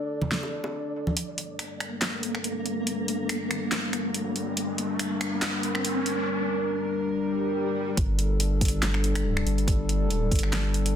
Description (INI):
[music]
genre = deep dubstep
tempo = 141 BPM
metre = 4/4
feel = swing 54% on 16ths, half-time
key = G minor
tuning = A4 = 440 Hz
[part]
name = dark analog pad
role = sustained chords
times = 0.0-11.0 s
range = G3 to D5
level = -30 LUFS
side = left 2 dB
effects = chorus
[part]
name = flickering grainy texture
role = texture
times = 0.0-6.3 s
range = Bb3 to D5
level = -34 LUFS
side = equal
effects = built-in reverb
[part]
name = congas and bongos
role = percussion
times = 0.2-1.1 s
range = none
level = -31 LUFS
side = right 1 dB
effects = dub echo
[part]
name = deep house drum kit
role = drums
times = 0.3-10.9 s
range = finger snaps, handclaps, hi-hat, snare drum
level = -30 LUFS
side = equal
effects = soft clipping on snare, high-pass filter on snare, high-pass filter on hats
[part]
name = riser and swell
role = sound effects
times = 3.2-8.0 s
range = none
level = -33 LUFS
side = right 1 dB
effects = none
[part]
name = saturated sub bass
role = bass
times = 8.0-11.0 s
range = G1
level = -26 LUFS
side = equal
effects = none
[part]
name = electronic kick drum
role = drums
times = 8.0-10.4 s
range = none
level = -25 LUFS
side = equal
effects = none
[sound]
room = light reverb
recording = dense, heavily limited modern master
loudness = -25 LUFS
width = side -9 dB against mid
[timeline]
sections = 0.0-1.2 A section; 1.2-8.0 B section; 8.0-11.0 C section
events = build-up 1.2-8.0; filter sweep on analog synth pad 1.2-8.0; riser 3.2-6.3; swell 7.1-8.0; drop 8.0-11.0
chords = 0.0 D5; 1.2 Gm; 8.0 G5